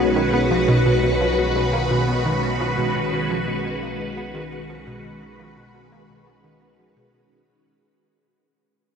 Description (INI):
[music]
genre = ambient, sequencer-driven space music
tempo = 86 BPM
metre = 4/4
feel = straight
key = B major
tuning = A4 = 439 Hz
[part]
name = phased string machine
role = sustained chords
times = 0.0-7.8 s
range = D#3 to B4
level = -22 LUFS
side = equal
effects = ensemble chorus, phaser
[part]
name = analog pluck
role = riff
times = 0.0-7.7 s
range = B2 to B3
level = -23 LUFS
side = equal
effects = chorus, ping-pong delay
[part]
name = fat analog bass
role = bass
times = 0.0-7.8 s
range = B1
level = -29 LUFS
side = equal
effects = none
[sound]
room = wet huge ambient reverb, RT60 7.7 s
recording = in a vast, echoing space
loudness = -18 LUFS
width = side -7 dB against mid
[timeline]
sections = 0.0-7.8 A section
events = fade-out on synth arpeggio sound 0.0-7.8; fade-out on analog synth bass 0.0-7.8; fade-out 0.0-7.8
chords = 0.0 B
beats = 0.16 0.86 1.56 | 2.25 2.95 3.65 4.35 | 5.04 5.74 6.44 7.14